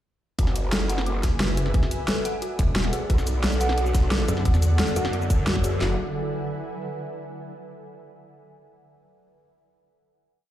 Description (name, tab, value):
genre	dark technical drum and bass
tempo	177 BPM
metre	4/4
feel	straight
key	F# minor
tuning	A4 = 438 Hz
part	dark detuned synth bell	arpeggios	0.4-6.0 s	F#4 to F#5	-32 LUFS	left 2 dB	chorus, phaser, sidechain pumping, ping-pong delay
part	growl bass	bass	0.4-6.0 s	F#1 to F#2	-25 LUFS	equal	chorus, overdrive
part	drum and bass drum kit	drums	0.4-5.9 s	handclaps, kick drum, snare drum	-22 LUFS	equal	none
part	dubstep drum kit	drums	0.4-5.7 s	hi-hat, shaker, snare drum	-28 LUFS	equal	none
part	ethereal airy pad	texture	0.9-7.1 s	A4 to G#5	-33 LUFS	right 2 dB	ensemble chorus, built-in reverb, sidechain pumping
part	pulsing pluck wobble bass	bass	1.2-4.8 s	E1 to F#2	-22 LUFS	equal	chorus
part	swarming drone	sustained chords	3.6-6.0 s	D3 to E4	-33 LUFS	equal	built-in reverb, phaser, sidechain pumping
room	light reverb, digital ambience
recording	played on a big sound system in a bare room, large studio reverb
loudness	-21 LUFS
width	side -12 dB against mid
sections	0.4-5.8 drop; 5.8-7.2 final chord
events	drop 0.4-5.8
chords	0.4 F#7(no3); 1.7 Esus2; 3.1 Bm; 4.5 Dadd9; 5.8 F#7(no3)